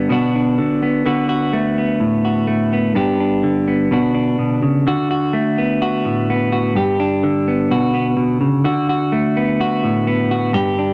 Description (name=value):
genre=highlife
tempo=127 BPM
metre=4/4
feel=straight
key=D major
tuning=A4 = 440 Hz
part: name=clean electric guitar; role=solo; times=0.0-10.9 s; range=G2 to G4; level=-17 LUFS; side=equal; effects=none
room=wet studio reverb, RT60 0.5 s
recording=none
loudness=-17 LUFS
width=mono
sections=0.0-4.9 A section; 4.9-10.9 B section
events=none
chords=0.1 Bm; 1.1 D6; 3.0 G; 3.9 Bm; 4.9 D6; 6.8 G; 7.7 Bm; 8.6 D6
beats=0.11 0.58 | 1.06 1.54 2.01 2.49 | 2.96 3.44 3.92 4.39 | 4.87 5.34 5.81 6.29 | 6.76 7.23 7.70 8.18 | 8.65 9.12 9.59 10.07 | 10.54